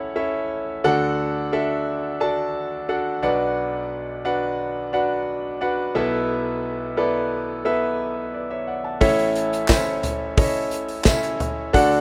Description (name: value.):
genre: piano-driven pop.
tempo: 88 BPM.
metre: 4/4.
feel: straight.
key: A major.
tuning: A4 = 439 Hz.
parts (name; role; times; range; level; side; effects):
clear concert grand piano; accompaniment; 0.0-12.0 s; A1 to A5; -24 LUFS; equal; none.
natural country drum kit; drums; 9.0-12.0 s; handclaps, hi-hat, kick drum, snare drum, toms; -24 LUFS; equal; none.
tambourine; percussion; 9.7-11.2 s; none; -34 LUFS; equal; none.
room: light reverb.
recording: rough home demo mix.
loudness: -23 LUFS.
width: mono.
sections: 0.0-12.0 A section.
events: none.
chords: 0.0 A; 0.8 D; 3.2 Bm; 6.0 Esus4/B; 9.0 A.